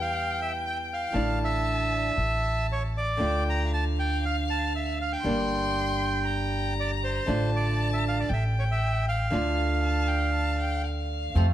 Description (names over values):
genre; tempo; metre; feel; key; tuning
tango; 117 BPM; 4/4; rubato; D minor; A4 = 440 Hz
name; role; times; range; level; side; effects
bandoneon; melody; 0.0-10.8 s; C5 to Bb5; -30 LUFS; right 1 dB; tape echo
warm violin; second line; 0.0-11.4 s; F5 to C6; -34 LUFS; left 2 dB; none
nylon-string guitar; accompaniment; 0.0-11.5 s; C3 to F4; -31 LUFS; right 2 dB; none
upright bass; bass; 0.0-11.5 s; G1 to F2; -28 LUFS; equal; none
bandoneon; stabs; 11.3-11.5 s; A3 to F4; -32 LUFS; right 6 dB; none
room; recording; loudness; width
light reverb; close, detailed microphones, vinyl crackle; -24 LUFS; side -12 dB against mid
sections
0.0-11.4 A section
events
none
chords
0.0 Em; 1.1 Asus4; 2.2 A5; 3.2 Dm; 5.2 Gm; 7.3 Dm/A; 8.3 A7(no3); 9.3 Dm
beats
0.13 0.64 | 1.15 1.66 2.17 2.69 | 3.20 3.71 4.22 4.74 | 5.25 5.76 6.27 6.78 | 7.28 7.79 8.30 8.81 | 9.32 9.83 10.34 10.85 | 11.37